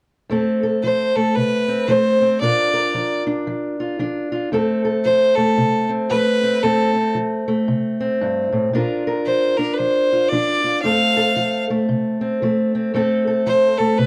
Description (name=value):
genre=acoustic country blues, solo or duo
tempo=114 BPM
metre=4/4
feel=swing 61% on 8ths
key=F major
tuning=A4 = 440 Hz
part: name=fingerpicked steel-string acoustic guitar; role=accompaniment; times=0.3-14.1 s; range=F2 to Bb4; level=-21 LUFS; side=equal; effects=none
part: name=clear fiddle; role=melody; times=0.8-14.1 s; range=A4 to F5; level=-20 LUFS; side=equal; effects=none
room=light reverb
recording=dark, warm production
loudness=-19 LUFS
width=mono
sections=0.3-14.1 A section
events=none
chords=0.3 F; 2.4 Bb; 4.5 F; 8.7 Bb; 10.8 F